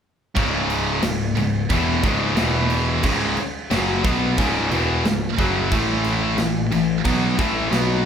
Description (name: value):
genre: heavy metal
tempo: 90 BPM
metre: 4/4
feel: straight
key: C# minor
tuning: A4 = 441 Hz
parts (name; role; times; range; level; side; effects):
- distorted electric guitar; riff; 0.4-8.1 s; C#2 to B3; -24 LUFS; left 1 dB; overdrive
- heavy high-gain guitar; riff; 0.4-8.1 s; C#2 to B3; -24 LUFS; left 6 dB; distortion
- heavy high-gain guitar; riff; 0.4-8.1 s; C#2 to B3; -25 LUFS; right 6 dB; distortion
- picked electric bass; bass; 0.4-8.1 s; C#1 to B1; -26 LUFS; right 1 dB; none
- tight metal drum kit; drums; 0.4-7.9 s; crash cymbal, kick drum, snare drum; -25 LUFS; right 1 dB; none
room: moderate large studio reverb, RT60 1.1 s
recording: band playing live in one room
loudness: -18 LUFS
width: side -8 dB against mid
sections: 0.4-8.1 A section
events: none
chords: 0.4 C#m; 2.4 E5; 3.0 C#m; 5.7 A5